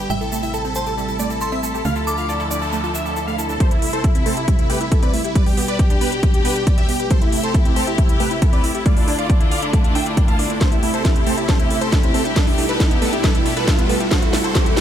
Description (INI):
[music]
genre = uplifting trance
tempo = 137 BPM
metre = 4/4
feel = straight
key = A minor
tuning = A4 = 440 Hz
[part]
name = big supersaw lead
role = melody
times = 0.0-14.8 s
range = B3 to A5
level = -23 LUFS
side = equal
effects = phaser, sidechain pumping, ping-pong delay
[part]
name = rich symphonic string section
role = sustained chords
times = 0.0-14.8 s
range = B2 to A4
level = -26 LUFS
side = left 3 dB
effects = sidechain pumping
[part]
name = analog pluck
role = arpeggios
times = 0.0-14.8 s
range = G3 to D5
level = -27 LUFS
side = right 4 dB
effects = chorus, sidechain pumping, tape echo
[part]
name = tight sequencer bass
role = bass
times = 0.0-3.6 s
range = A1 to D2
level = -28 LUFS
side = equal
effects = tube saturation, sidechain pumping
[part]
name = glassy synth bell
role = second line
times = 0.1-3.5 s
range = G5 to D6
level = -29 LUFS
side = equal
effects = chorus, digital delay
[part]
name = egg shaker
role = percussion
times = 0.1-3.6 s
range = none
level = -33 LUFS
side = right 3 dB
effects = none
[part]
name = noise sweep and riser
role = sound effects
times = 2.2-14.8 s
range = none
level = -29 LUFS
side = right 3 dB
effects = none
[part]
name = electronic kick drum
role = drums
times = 3.6-14.6 s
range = none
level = -17 LUFS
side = equal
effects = overdrive
[part]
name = techno drum kit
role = drums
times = 3.6-14.8 s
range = hi-hat, snare drum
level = -25 LUFS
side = equal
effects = overdrive
[sound]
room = little or no reverb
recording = none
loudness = -16 LUFS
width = side -10 dB against mid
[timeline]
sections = 0.0-3.6 A section; 3.6-14.8 B section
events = noise sweep 2.2-3.6; build-up 3.6-14.8; riser 3.6-14.8; filter sweep on synth pluck 3.6-14.8; drum fill 10.6-14.8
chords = 0.1 Am7; 1.9 Dmadd9; 3.6 Am7; 5.4 G; 7.1 Am7; 8.9 Dmadd9; 10.6 Am7; 12.4 G; 14.1 Am7